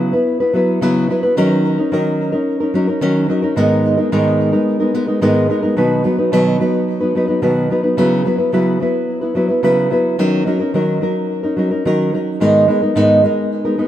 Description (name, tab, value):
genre	pop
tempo	109 BPM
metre	4/4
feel	straight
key	B major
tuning	A4 = 440 Hz
part	nylon-string guitar	solo	0.0-13.9 s	G#2 to B4	-13 LUFS	equal	digital delay
room	moderate lush hall reverb, RT60 2.5 s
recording	rough home demo mix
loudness	-13 LUFS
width	side -12 dB against mid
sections	0.0-5.8 A section; 5.8-13.9 B section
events	none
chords	0.0 F#7sus4/C#; 1.4 D#m7; 3.6 G#madd9; 5.8 B; 8.0 F#7sus4/C#; 10.2 D#m7; 12.4 G#madd9